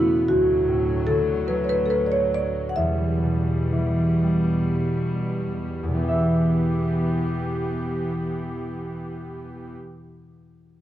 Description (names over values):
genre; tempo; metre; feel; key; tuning
celtic folk, Celtic slow air; 32-52 BPM (dotted quarters); 6/8; rubato; E minor; A4 = 440 Hz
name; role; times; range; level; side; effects
marimba with medium hard mallets; melody; 0.0-4.7 s; E4 to F#5; -21 LUFS; equal; none
concert harp; accompaniment; 0.0-9.9 s; D2 to E5; -24 LUFS; equal; none
rich chamber string section; sustained chords; 0.0-9.8 s; D2 to G4; -29 LUFS; equal; none
room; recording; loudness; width
light reverb; dry, close 1970s-style studio recording; -21 LUFS; side -12 dB against mid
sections
0.0-5.9 A section; 5.9-9.6 B section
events
slowing down 0.3-5.9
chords
0.3 D; 2.8 Em